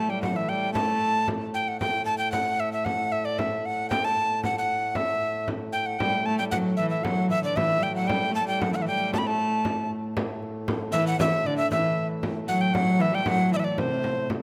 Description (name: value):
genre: medieval dance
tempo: 115 BPM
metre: 2/4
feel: straight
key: A dorian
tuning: A4 = 438 Hz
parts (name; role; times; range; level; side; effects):
- breathy alto recorder; melody; 0.0-14.3 s; C5 to B5; -28 LUFS; equal; none
- warm viola da gamba; second line; 0.0-1.5, 6.0-14.3 s; C3 to A3; -30 LUFS; equal; none
- pedal harmonium; drone; 0.0-14.4 s; A2; -36 LUFS; equal; none
- frame drum; percussion; 0.2-14.4 s; none; -35 LUFS; equal; none
room: moderate concert hall reverb, RT60 2.0 s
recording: close, detailed microphones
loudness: -26 LUFS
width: mono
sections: 0.0-1.8 A section; 1.8-10.2 A section; 10.2-14.4 B section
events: none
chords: none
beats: 0.23 | 0.76 1.28 | 1.81 2.33 | 2.86 3.38 | 3.90 4.43 | 4.95 5.47 | 6.00 6.52 | 7.04 7.56 | 8.08 8.60 | 9.12 9.64 | 10.16 10.68 | 11.19 11.71 | 12.23 12.75 | 13.26 13.78 | 14.29